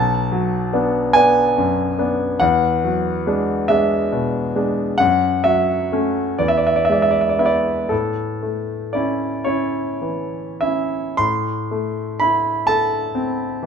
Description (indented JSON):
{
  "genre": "classical, romantic nocturne for solo piano",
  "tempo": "32-48 BPM (dotted quarters)",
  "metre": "6/8",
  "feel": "rubato",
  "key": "A major",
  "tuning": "A4 = 436 Hz",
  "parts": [
    { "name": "bright concert grand piano", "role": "solo", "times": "0.0-13.7 s", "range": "B1 to C6", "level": "-17 LUFS", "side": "equal", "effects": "none" }
  ],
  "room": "light reverb",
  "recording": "none",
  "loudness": "-17 LUFS",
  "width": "side -7 dB against mid",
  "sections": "0.0-11.2 A section; 11.2-13.7 B section",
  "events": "none",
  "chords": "0.0 Bm7; 2.4 E9; 5.0 F#m; 6.4 E; 7.9 A; 11.2 Am"
}